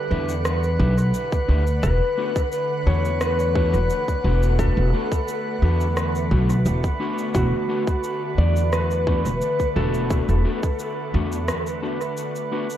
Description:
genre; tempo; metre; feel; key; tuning
ambient dub; 87 BPM; 4/4; straight; unclear; A4 = 440 Hz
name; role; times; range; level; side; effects
clean lap steel guitar; melody; 0.0-12.1 s; F#4 to D5; -27 LUFS; left 2 dB; dub echo
soft additive organ-like pad; sustained chords; 0.0-12.8 s; D3 to F#5; -31 LUFS; equal; ensemble chorus, built-in reverb
drifting glass-harmonics texture; texture; 0.0-12.8 s; B4; -30 LUFS; right 4 dB; chorus, built-in reverb
electric guitar at the edge of break-up; stabs; 0.1-12.7 s; A3 to B4; -30 LUFS; left 5 dB; dub echo
upright bass; bass; 0.1-11.5 s; E1 to E2; -20 LUFS; equal; none
electronic shaker and rim click; drums; 0.3-12.8 s; none; -32 LUFS; equal; dub echo
electronic kick drum; drums; 0.8-10.8 s; none; -23 LUFS; equal; none
room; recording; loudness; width
light reverb; echo-heavy mix; -19 LUFS; side -11 dB against mid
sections
0.0-12.8 A section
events
break 11.5-12.8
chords
0.0 Em7; 1.8 Bm7/E

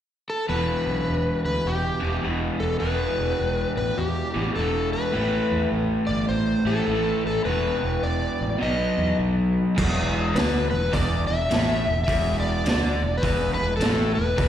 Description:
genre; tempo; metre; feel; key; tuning
blues rock power trio and southern rock; 104 BPM; 4/4; swing 64% on 8ths; E minor; A4 = 440 Hz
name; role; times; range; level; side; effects
overdriven slide guitar; melody; 0.3-14.5 s; G4 to E5; -26 LUFS; left 2 dB; slapback echo
crunchy overdriven guitar; riff; 0.5-14.5 s; E2 to B3; -25 LUFS; equal; slapback echo
fuzz fingered electric bass; bass; 0.5-14.5 s; E1 to E2; -27 LUFS; right 1 dB; overdrive
raw garage drum kit; drums; 9.8-14.5 s; crash cymbal, hi-hat, kick drum, snare drum; -26 LUFS; right 1 dB; none
room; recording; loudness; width
light reverb; live gig heard through the venue's PA, recital hall reverb; -21 LUFS; side -10 dB against mid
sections
0.5-9.8 A section; 9.8-14.5 B section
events
none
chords
0.5 Em; 5.1 Asus2; 7.5 E5; 8.6 B; 9.8 E5

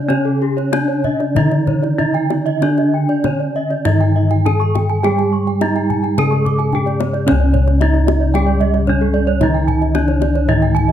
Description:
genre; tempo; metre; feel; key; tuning
Balinese gamelan; 95-112 BPM; 4/4; straight; C# pelog; A4 = 436 Hz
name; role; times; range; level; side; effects
gamelan-type bronze metallophone; melody; 0.0-10.9 s; C#4 to A4-40c; -20 LUFS; right 1 dB; none
gamelan-type bronze metallophone; accompaniment; 0.0-10.9 s; C#3 to A3-40c; -22 LUFS; right 3 dB; none
gamelan-type bronze metallophone; arpeggios; 0.0-10.9 s; A4-40c to C#6; -24 LUFS; right 9 dB; none
gamelan-type bossed gongs; bass; 0.0-10.9 s; C#2 to G#4-45c; -16 LUFS; left 1 dB; none
gamelan-type bronze metallophone; arpeggios; 0.1-10.9 s; G#4-45c to D6; -24 LUFS; left 4 dB; none
kendang; percussion; 0.1-10.9 s; none; -24 LUFS; left 5 dB; none
room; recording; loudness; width
light reverb; close, detailed microphones; -13 LUFS; side -10 dB against mid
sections
0.0-7.3 A section; 7.3-10.9 B section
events
none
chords
none

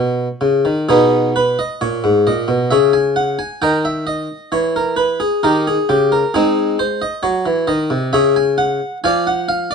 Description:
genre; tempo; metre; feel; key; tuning
classical, baroque-style suite movement for harpsichord; 66 BPM; 3/4; rubato; G# minor; A4 = 438 Hz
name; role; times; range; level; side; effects
harpsichord; solo; 0.0-9.7 s; G#2 to G#5; -14 LUFS; equal; none
room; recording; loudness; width
moderate studio reverb, RT60 0.8 s; worn, warbling old tape, cassette tape, warbly pitch drift; -14 LUFS; side -6 dB against mid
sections
0.9-9.7 A section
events
none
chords
0.0 G#m (rootless); 0.9 G#m/B; 2.7 C#5; 3.6 D#5; 5.4 D#7; 6.3 G#7; 8.1 C#5; 9.0 Ddim

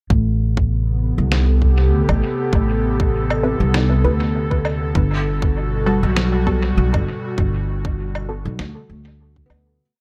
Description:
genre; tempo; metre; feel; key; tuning
ambient dub; 99 BPM; 4/4; swing 55% on 16ths; A dorian; A4 = 439 Hz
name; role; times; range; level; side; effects
airy breathy pad; sustained chords; 0.1-9.8 s; B2 to A4; -26 LUFS; equal; chorus
upright bass; bass; 0.1-9.8 s; G1 to D2; -21 LUFS; equal; none
electronic kick drum; drums; 0.1-9.5 s; none; -22 LUFS; equal; none
electronic snare drum and woodblock; drums; 1.3-9.6 s; none; -29 LUFS; equal; overdrive, dub echo
filtered dub chord stab; stabs; 3.4-8.5 s; G3 to B4; -28 LUFS; equal; phaser, analog chorus, dub echo
felt-muted upright piano; arpeggios; 9.5-10.0 s; B3; -35 LUFS; equal; analog delay
room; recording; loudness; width
digital ambience; echo-heavy mix; -19 LUFS; mono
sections
0.1-9.8 groove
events
fade-out 6.6-9.8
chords
0.1 Am9; 5.0 Gmaj9

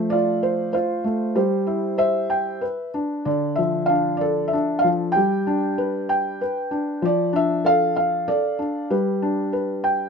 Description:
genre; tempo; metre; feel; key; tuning
children's music, lullaby; 96 BPM; 3/4; straight; unclear; A4 = 439 Hz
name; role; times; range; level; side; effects
felt-muted upright piano; solo; 0.0-10.1 s; D3 to G5; -20 LUFS; equal; none
room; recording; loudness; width
light reverb; minimal, uncompressed stereo recording; -20 LUFS; side -5 dB against mid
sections
0.0-10.1 A section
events
none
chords
0.0 F; 1.4 C/G; 2.6 Bmadd11; 3.3 Dm; 5.2 G; 7.0 Dm/F; 8.9 G

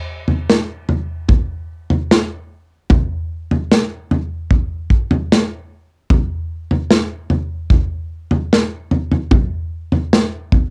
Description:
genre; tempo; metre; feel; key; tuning
pop; 74 BPM; 4/4; straight; none; none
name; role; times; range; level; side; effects
natural country drum kit; drums; 0.3-10.7 s; kick drum, snare drum, toms; -17 LUFS; equal; cassette tape
room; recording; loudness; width
wet booth ambience, RT60 0.2 s; home recording on cassette; -18 LUFS; mono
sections
0.0-10.7 A section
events
none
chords
none

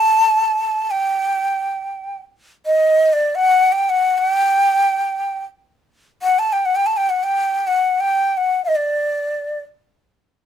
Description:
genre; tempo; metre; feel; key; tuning
Arabic maqam ensemble; free time; none; none; unclear; A4 = 440 Hz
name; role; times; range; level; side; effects
breathy bright ney; solo; 0.0-9.6 s; D5 to A5; -15 LUFS; equal; none
room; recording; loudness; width
light reverb; minimal, uncompressed stereo recording; -15 LUFS; side -9 dB against mid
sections
0.0-10.5 A section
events
none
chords
none

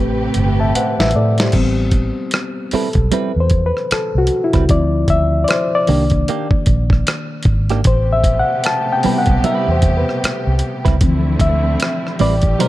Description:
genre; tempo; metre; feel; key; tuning
R&B, neo-soul; 76 BPM; 4/4; swing 60% on 16ths; unclear; A4 = 439 Hz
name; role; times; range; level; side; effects
reed electric piano; accompaniment; 0.0-12.7 s; A2 to A5; -18 LUFS; left 2 dB; none
warm symphonic string section; sustained chords; 0.0-1.5, 7.9-12.7 s; C3 to B4; -24 LUFS; right 3 dB; none
vintage muted fingered electric bass; bass; 0.0-12.6 s; G1 to A2; -17 LUFS; equal; none
dusty soul sampler-style drum kit; drums; 0.3-12.7 s; crash cymbal, hi-hat, kick drum, rim click, snare drum; -18 LUFS; equal; none
clean electric guitar; second line; 2.7-12.7 s; Eb3 to B4; -21 LUFS; right 7 dB; none
room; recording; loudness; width
light reverb, digital ambience; dark, warm production; -13 LUFS; side -16 dB against mid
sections
0.0-1.5 A section; 1.5-12.7 B section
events
drum fill 0.0-1.5; reed electric piano solo 1.5-12.7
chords
0.0 Am9; 4.7 Dm9; 5.9 Cm9; 7.8 Am9; 11.0 Dm9

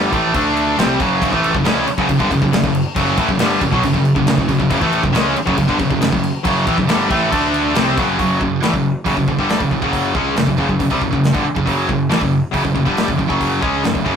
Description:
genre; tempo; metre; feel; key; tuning
heavy metal; 138 BPM; 4/4; straight; F# phrygian; A4 = 440 Hz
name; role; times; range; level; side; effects
scooped high-gain guitar; riff; 0.0-14.1 s; F#2 to D4; -18 LUFS; right 4 dB; distortion
tight distorted guitar; riff; 0.0-14.1 s; F#2 to D4; -20 LUFS; left 6 dB; distortion
fuzz picked electric bass; bass; 0.0-14.2 s; F#1 to D2; -24 LUFS; equal; overdrive
modern studio drum kit; drums; 0.1-14.2 s; crash cymbal, hi-hat, kick drum, snare drum; -21 LUFS; left 1 dB; none
high-gain distorted guitar; riff; 1.2-8.2 s; F#2 to D4; -24 LUFS; equal; none
room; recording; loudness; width
light reverb; rough rehearsal-room recording, tube saturation; -14 LUFS; side -7 dB against mid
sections
0.0-8.2 A section; 8.2-14.2 B section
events
none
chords
0.3 D5; 0.8 F#m; 7.3 D5; 7.8 F#5

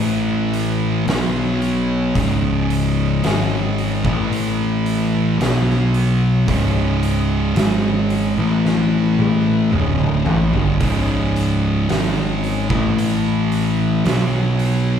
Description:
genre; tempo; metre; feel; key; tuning
stoner and doom metal; 56 BPM; 4/4; straight; C# minor; A4 = 439 Hz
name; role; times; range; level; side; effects
tonewheel organ; sustained chords; 0.0-15.0 s; A3 to D#5; -31 LUFS; equal; slow rotary speaker, overdrive, chorus vibrato
thick fuzz guitar; riff; 0.0-15.0 s; C#2 to B3; -21 LUFS; left 7 dB; distortion
thick fuzz guitar; riff; 0.0-15.0 s; C#2 to B3; -21 LUFS; right 5 dB; distortion
fuzz picked electric bass; bass; 0.0-15.0 s; C#1 to B1; -22 LUFS; equal; overdrive
oversized low-tuned drum kit; drums; 0.5-14.8 s; hi-hat, kick drum, snare drum, toms; -23 LUFS; right 1 dB; none
room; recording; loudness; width
moderate large studio reverb, RT60 0.8 s; band playing live in one room; -16 LUFS; side -8 dB against mid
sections
0.0-15.0 A section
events
drum fill 8.6-10.8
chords
0.0 A5; 1.1 B5; 2.2 C#5; 4.1 A5; 5.4 B5; 6.5 C#5; 8.4 A5; 9.7 C#m; 12.7 A5; 14.1 B5

